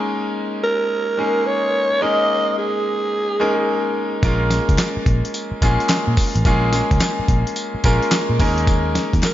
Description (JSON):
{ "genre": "R&B, new jack swing", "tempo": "108 BPM", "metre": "4/4", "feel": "swing 66% on 16ths", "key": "unclear", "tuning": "A4 = 442 Hz", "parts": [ { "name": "bright grand piano", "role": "accompaniment", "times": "0.0-9.3 s", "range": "Ab3 to Bb4", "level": "-21 LUFS", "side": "left 1 dB", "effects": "slapback echo" }, { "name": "breathy alto saxophone", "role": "melody", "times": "0.6-3.9, 9.2-9.3 s", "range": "Ab4 to Eb5", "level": "-19 LUFS", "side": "right 1 dB", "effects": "slapback echo" }, { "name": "vintage muted picked electric bass", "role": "bass", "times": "4.2-9.2 s", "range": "A1 to Bb2", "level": "-20 LUFS", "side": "equal", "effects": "none" }, { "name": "dusty soul sampler-style drum kit", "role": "drums", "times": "4.2-9.3 s", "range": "handclaps, hi-hat, kick drum, snare drum, tambourine", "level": "-19 LUFS", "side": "equal", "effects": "none" }, { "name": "group handclap", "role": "percussion", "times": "4.8-9.3 s", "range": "none", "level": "barely audible", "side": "none", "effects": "none" } ], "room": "light reverb", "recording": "nothing above 7.5 kHz", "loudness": "-16 LUFS", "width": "side -13 dB against mid", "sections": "0.0-9.3 A section", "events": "none", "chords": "0.0 Eb7sus4; 4.2 Bbm7; 8.4 Eb7sus4" }